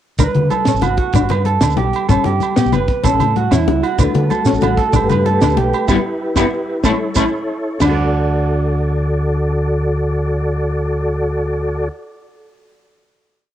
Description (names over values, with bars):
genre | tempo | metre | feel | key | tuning
highlife guitar band | 126 BPM (dotted quarters) | 12/8 | straight | D major | A4 = 437 Hz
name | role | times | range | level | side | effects
clean electric guitar | accompaniment | 0.2-7.9 s | G3 to E4 | -21 LUFS | left 8 dB | analog chorus
electric guitar through a small old amp | arpeggios | 0.2-12.0 s | C#4 to D5 | -20 LUFS | right 7 dB | analog delay
deep dub fingered electric bass | bass | 0.2-11.9 s | G1 to D3 | -18 LUFS | equal | none
tight funk drum kit | drums | 0.2-7.9 s | crash cymbal, hi-hat, kick drum, snare drum, toms | -20 LUFS | equal | cassette tape
agogo bells | percussion | 0.2-7.9 s | none | -27 LUFS | right 10 dB | none
congas | percussion | 0.2-8.0 s | none | -22 LUFS | left 8 dB | none
shekere | percussion | 0.2-8.0 s | none | -20 LUFS | right 4 dB | none
tonewheel organ | sustained chords | 4.0-11.9 s | A3 to D5 | -20 LUFS | equal | slow rotary speaker, chorus vibrato
room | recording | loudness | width
light reverb, small room reverb | home recording on cassette | -14 LUFS | side -11 dB against mid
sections
0.2-7.8 groove; 7.8-11.6 final chord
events
band accent 5.9-7.8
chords
0.2 D; 1.1 G; 2.1 Gadd9; 3.0 A; 4.0 D; 5.0 G; 5.9 Em; 6.9 A; 7.8 D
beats
| 0.20 0.67 1.15 1.62 | 2.10 2.57 3.05 3.52 | 4.00 4.47 4.95 5.43 | 5.90 6.38 6.86 7.33 | 7.81 8.29 8.76 9.24 | 9.71 10.19 10.66 11.14